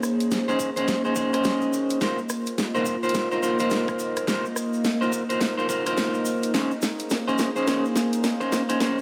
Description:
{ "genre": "glitch hop", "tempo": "106 BPM", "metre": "4/4", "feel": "swing 61% on 16ths", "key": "Bb minor", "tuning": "A4 = 441 Hz", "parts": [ { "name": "warbly tape-like pad", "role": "sustained chords", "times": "0.0-9.0 s", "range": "Bb3 to Eb5", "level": "-30 LUFS", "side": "equal", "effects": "chorus, built-in reverb, sidechain pumping" }, { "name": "dubstep drum kit", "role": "drums", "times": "0.0-8.9 s", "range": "hi-hat, rim click, snare drum", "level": "-30 LUFS", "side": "equal", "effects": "none" }, { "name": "tube shaker", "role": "percussion", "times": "0.0-9.0 s", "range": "none", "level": "-41 LUFS", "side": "equal", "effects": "none" }, { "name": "clean electric guitar", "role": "stabs", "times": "0.5-9.0 s", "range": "Db4 to C5", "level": "-28 LUFS", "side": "equal", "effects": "vintage 12-bit sampler grit, sidechain pumping, dub echo" }, { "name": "electronic kick drum", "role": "drums", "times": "0.6-8.9 s", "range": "none", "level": "-41 LUFS", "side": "equal", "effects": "high-pass filter on kick" } ], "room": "moderate lush hall reverb, RT60 2.8 s", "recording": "high-pass filter", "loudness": "-24 LUFS", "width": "mono", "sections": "0.0-9.0 A section", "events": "build-up 0.0-9.0; drum fill 0.0-9.0", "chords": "0.0 Bbm11; 2.0 F7sus4; 6.5 Bbm11", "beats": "0.32 0.88 1.45 | 2.01 2.58 3.15 3.71 | 4.28 4.84 5.41 5.98 | 6.54 7.11 7.67 8.24 | 8.81" }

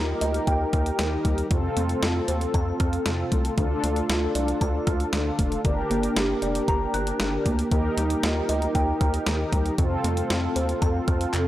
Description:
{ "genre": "synth-pop", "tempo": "116 BPM", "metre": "4/4", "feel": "straight", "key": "unclear", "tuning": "A4 = 441 Hz", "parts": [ { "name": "mellow synth brass", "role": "accompaniment", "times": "0.0-11.5 s", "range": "C4 to Bb4", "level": "-27 LUFS", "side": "left 1 dB", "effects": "chorus" }, { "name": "kalimba", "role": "arpeggios", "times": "0.0-11.5 s", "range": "C3 to F#6", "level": "-30 LUFS", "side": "right 2 dB", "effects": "tape echo" }, { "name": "rubbery square bass", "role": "bass", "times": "0.0-11.5 s", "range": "F1 to F2", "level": "-28 LUFS", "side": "equal", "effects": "none" }, { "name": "clean 12-bit digital drum machine", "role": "drums", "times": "0.2-11.5 s", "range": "handclaps, hi-hat, kick drum, snare drum", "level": "-26 LUFS", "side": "equal", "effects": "none" } ], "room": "light reverb, digital ambience", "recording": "dry, gritty hardware recording", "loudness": "-22 LUFS", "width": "side -14 dB against mid", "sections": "0.0-11.5 A section", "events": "none", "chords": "0.0 Ebadd9; 1.5 F; 3.6 Dm; 5.6 Gm; 7.7 Ebadd9; 9.8 F", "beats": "0.47 0.99 | 1.51 2.03 2.54 3.06 | 3.58 4.09 4.61 5.13 | 5.65 6.16 6.68 7.20 | 7.71 8.23 8.75 9.27 | 9.78 10.30 10.82 11.34" }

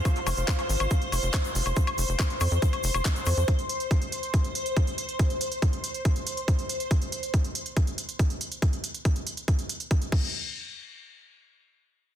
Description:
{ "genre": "psychedelic trance", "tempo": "140 BPM", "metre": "4/4", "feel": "straight", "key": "unclear", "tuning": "A4 = 440 Hz", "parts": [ { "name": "evolving wavetable pad", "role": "sustained chords", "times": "0.0-6.9 s", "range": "C5", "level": "-32 LUFS", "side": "left 1 dB", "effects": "ensemble chorus, built-in reverb, phaser, sidechain pumping" }, { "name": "airy breathy pad", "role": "texture", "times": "0.0-3.5 s", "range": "F4 to F5", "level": "-40 LUFS", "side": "right 1 dB", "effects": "chorus, sidechain pumping" }, { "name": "electronic kick drum", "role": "drums", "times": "0.1-10.2 s", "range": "none", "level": "-26 LUFS", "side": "equal", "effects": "none" }, { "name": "garage drum kit", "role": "drums", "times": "0.1-10.2 s", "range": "crash cymbal, handclaps, hi-hat, woodblock", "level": "-32 LUFS", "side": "equal", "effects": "none" }, { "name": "tube shaker", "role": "percussion", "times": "0.1-3.5 s", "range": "none", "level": "-39 LUFS", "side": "left 3 dB", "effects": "none" }, { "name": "tight sequencer bass", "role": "bass", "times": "0.3-3.4 s", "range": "F1 to F2", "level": "-26 LUFS", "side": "equal", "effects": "none" } ], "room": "digital ambience", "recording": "dense, heavily limited modern master", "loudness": "-24 LUFS", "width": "side -10 dB against mid", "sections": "0.0-10.3 A section; 10.3-12.2 B section", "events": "fade-out on analog synth pad 0.0-3.5", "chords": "0.0 F5; 3.5 N.C.", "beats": "| 0.05 0.48 0.91 1.34 | 1.77 2.19 2.62 3.05 | 3.48 3.91 4.34 4.77 | 5.19 5.62 6.05 6.48 | 6.91 7.34 7.77 8.19 | 8.62 9.05 9.48 9.91" }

